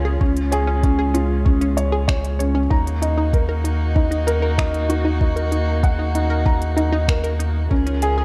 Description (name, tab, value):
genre	piano and strings electronica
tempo	96 BPM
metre	4/4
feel	straight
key	Eb minor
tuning	A4 = 440 Hz
part	dark string quartet	sustained chords	0.0-8.2 s	Db3 to Bb4	-31 LUFS	equal	sidechain pumping
part	felt-muted upright piano	riff	0.0-8.2 s	Db4 to Bb5	-26 LUFS	equal	tape echo
part	warm sub bass	bass	0.0-8.2 s	Db2 to Eb2	-24 LUFS	equal	sidechain pumping
part	unison pluck	arpeggios	0.1-8.2 s	Db4 to Db5	-30 LUFS	equal	vintage 12-bit sampler grit, sidechain pumping, tape echo
part	electronic kick drum	drums	0.2-7.8 s	none	-21 LUFS	equal	overdrive
part	organic electronic drum kit	drums	0.4-8.1 s	finger snaps, hi-hat	-32 LUFS	equal	overdrive
room	light reverb, digital ambience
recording	dark, warm production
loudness	-19 LUFS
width	mono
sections	0.0-8.2 A section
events	none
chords	0.2 Db; 2.7 Ebm; 7.7 Bbm7/Db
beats	| 0.21 0.83 1.46 2.08 | 2.71 3.33 3.96 4.58 | 5.21 5.83 6.46 7.08 | 7.71